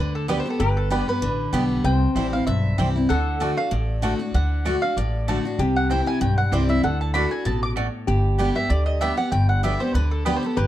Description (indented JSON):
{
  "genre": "bluegrass",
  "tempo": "193 BPM",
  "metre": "4/4",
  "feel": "swing 54% on 8ths",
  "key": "unclear",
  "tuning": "A4 = 440 Hz",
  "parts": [
    { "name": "mandolin", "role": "melody", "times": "0.0-10.7 s", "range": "G4 to D6", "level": "-27 LUFS", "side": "right 1 dB", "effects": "plate reverb" },
    { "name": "lap resonator guitar", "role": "second line", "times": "0.0-10.7 s", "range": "G4 to C5", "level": "-31 LUFS", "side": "left 2 dB", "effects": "analog delay" },
    { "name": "picked steel-string acoustic guitar", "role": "accompaniment", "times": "0.0-10.7 s", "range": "G2 to G4", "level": "-24 LUFS", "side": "left 1 dB", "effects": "none" },
    { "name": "upright bass", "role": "bass", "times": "0.0-10.7 s", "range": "G1 to D2", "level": "-23 LUFS", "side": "equal", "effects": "none" },
    { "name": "mandolin", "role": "stabs", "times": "0.3-10.4 s", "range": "A3 to A5", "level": "-29 LUFS", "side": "right 4 dB", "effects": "none" }
  ],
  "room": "light reverb",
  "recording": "dark, warm production",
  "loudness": "-20 LUFS",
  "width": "side -13 dB against mid",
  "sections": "0.0-8.1 A section; 8.1-10.7 A section",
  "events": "none",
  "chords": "0.0 G; 1.8 C; 3.1 D; 5.6 C; 6.8 D; 8.1 G",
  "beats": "0.29 | 0.60 0.91 1.23 1.54 | 1.85 2.16 2.47 2.79 | 3.10 3.41 3.72 4.03 | 4.34 4.66 4.97 5.28 | 5.59 5.90 6.21 6.52 | 6.84 7.15 7.46 7.77 | 8.08 8.39 8.70 9.02 | 9.33 9.64 9.95 10.26 | 10.57"
}